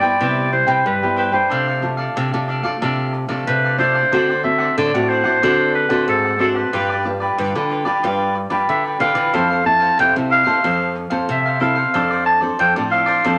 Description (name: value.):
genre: samba.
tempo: 92 BPM.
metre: 4/4.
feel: straight.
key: unclear.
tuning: A4 = 440 Hz.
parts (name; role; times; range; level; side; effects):
growling clarinet; melody; 0.0-13.4 s; A4 to A5; -20 LUFS; equal; none.
cavaquinho; accompaniment; 0.0-13.4 s; D4 to G5; -25 LUFS; equal; none.
nylon-string guitar; accompaniment; 0.0-13.4 s; G2 to B4; -25 LUFS; equal; none.
nylon-string guitar; bass; 0.2-13.4 s; F2 to G3; -26 LUFS; equal; none.
room: wet studio reverb, RT60 0.7 s.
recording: none.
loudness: -18 LUFS.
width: mono.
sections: 0.0-13.4 A section.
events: none.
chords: 0.0 Cmaj7; 1.5 F6/C; 4.1 D7; 6.7 G7; 9.3 Fmaj7; 11.9 Dm7/F.